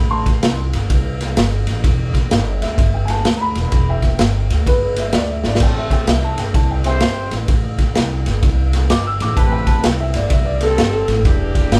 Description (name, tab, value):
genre	electric blues shuffle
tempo	128 BPM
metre	4/4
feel	swing 64% on 8ths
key	unclear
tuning	A4 = 440 Hz
part	dark upright piano	second line	0.0-11.2 s	G4 to E6	-25 LUFS	equal	none
part	upright bass	bass	0.0-11.8 s	E1 to D2	-22 LUFS	equal	none
part	raw garage drum kit	drums	0.3-11.8 s	crash cymbal, kick drum, ride cymbal, snare drum	-19 LUFS	equal	none
part	warm horn section	stabs	5.6-11.8 s	C4 to C5	-27 LUFS	equal	none
room	moderate large studio reverb, RT60 0.9 s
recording	band playing live in one room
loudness	-17 LUFS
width	mono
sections	0.0-11.8 A section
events	upright piano solo 0.0-11.8; drum fill 5.4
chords	0.0 Am7; 1.9 Em7; 5.6 Am7; 11.3 Em7